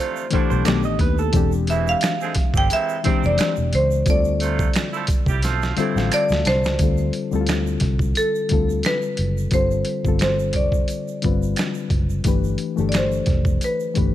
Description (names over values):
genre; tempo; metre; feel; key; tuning
R&B, neo-soul; 88 BPM; 4/4; swing 55% on 16ths; D dorian; A4 = 440 Hz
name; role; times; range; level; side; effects
marimba with medium hard mallets; melody; 0.0-14.1 s; A4 to G5; -23 LUFS; right 1 dB; none
reed electric piano; accompaniment; 0.0-14.1 s; D3 to A5; -25 LUFS; left 7 dB; none
clear horn section; stabs; 0.0-6.3 s; G#2 to A4; -28 LUFS; right 8 dB; none
egg shaker and finger snaps; percussion; 0.2-13.9 s; none; -34 LUFS; right 14 dB; none
vintage muted fingered electric bass; bass; 0.3-14.1 s; E1 to D#2; -23 LUFS; right 1 dB; none
boom bap sampler-style drum kit; drums; 0.3-14.1 s; hi-hat, kick drum, snare drum; -22 LUFS; equal; none
electric guitar through a small old amp; second line; 0.5-1.5 s; A4 to D#5; -27 LUFS; right 10 dB; none
room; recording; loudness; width
light reverb, studio reverb; none; -18 LUFS; side -12 dB against mid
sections
0.0-6.8 A section; 6.8-14.1 B section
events
drum fill 5.4-6.8; reed electric piano fill 5.4-6.8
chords
0.0 Dm9; 0.7 B7alt; 1.3 E7alt; 4.1 Dm9; 9.5 G9sus4; 12.2 G13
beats
0.66 | 1.34 2.02 2.70 3.38 | 4.07 4.75 5.43 6.11 | 6.79 7.47 8.16 8.84 | 9.52 10.20 10.88 11.57 | 12.25 12.93 13.61